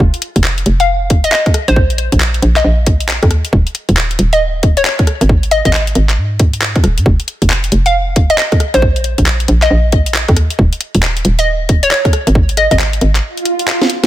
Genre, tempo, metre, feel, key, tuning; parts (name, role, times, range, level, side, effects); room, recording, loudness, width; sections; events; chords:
UK garage, two-step garage; 136 BPM; 4/4; swing 63% on 16ths; A4 = 440 Hz
hollow knocking FM bass; bass; 0.0-13.2 s; Eb1 to Ab2; -13 LUFS; equal
electronic kick drum; drums; 0.0-12.8 s; -12 LUFS; equal
garage drum kit; drums; 0.1-14.1 s; handclaps, hi-hat, rim click, snare drum; -16 LUFS; left 1 dB
hollow square pluck; melody; 0.8-12.8 s; C5 to F5; -15 LUFS; left 1 dB; chorus, ping-pong delay
swell; sound effects; 13.3-14.1 s; -18 LUFS; right 3 dB
little or no reverb; -10 LUFS; side -14 dB against mid
0.0-14.1 A section
break 13.2-14.1; swell 13.3-14.1; drum fill 13.8
0.0 N.C.; 1.8 Bbsus4; 3.3 Ab5; 7.1 N.C.; 8.8 Bbsus4; 10.4 N.C.; 12.4 Ab5